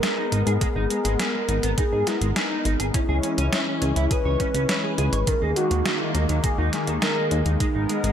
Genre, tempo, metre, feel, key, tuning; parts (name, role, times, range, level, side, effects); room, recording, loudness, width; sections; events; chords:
synthwave; 103 BPM; 4/4; straight; G# minor; A4 = 438 Hz
warm velvety synth lead; melody; 0.0-8.1 s; D#4 to B4; -27 LUFS; equal; chorus, cassette tape, ping-pong delay
warm analog pad; sustained chords; 0.0-8.1 s; D#3 to A#4; -28 LUFS; left 2 dB; lush chorus, sidechain pumping
electric guitar at the edge of break-up; riff; 0.0-8.1 s; D#3 to C#5; -31 LUFS; right 2 dB; ensemble chorus, ping-pong delay
detuned 8-bit digital drum machine; drums; 0.0-8.1 s; hi-hat, snare drum; -28 LUFS; equal; overdrive
chorused synth bass; bass; 0.3-8.1 s; G#1 to G#2; -24 LUFS; equal; tube saturation, sidechain pumping
electronic kick drum; drums; 0.6-7.7 s; -24 LUFS; equal; overdrive
moderate plate reverb, RT60 1.8 s, digital ambience; dreamy mix soaked in reverb; -20 LUFS; side -9 dB against mid
0.0-8.1 A section
0.0 G#madd9; 2.9 C#m; 5.3 D#sus4; 7.6 G#madd9